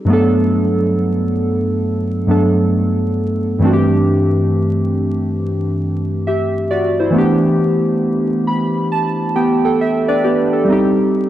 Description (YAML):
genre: hip hop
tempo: 68 BPM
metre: 4/4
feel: swing 65% on 16ths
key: G major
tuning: A4 = 437 Hz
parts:
  - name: warbly lo-fi synth keys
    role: solo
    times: 0.0-11.3 s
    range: G2 to B5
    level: -14 LUFS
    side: equal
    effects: chorus, cassette tape
room: light reverb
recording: dark, warm production, vinyl crackle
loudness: -14 LUFS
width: side -12 dB against mid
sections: 0.0-10.7 A section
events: none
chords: 0.1 Bm7/G; 3.6 D9sus4/G; 7.2 G69; 10.7 Cm/G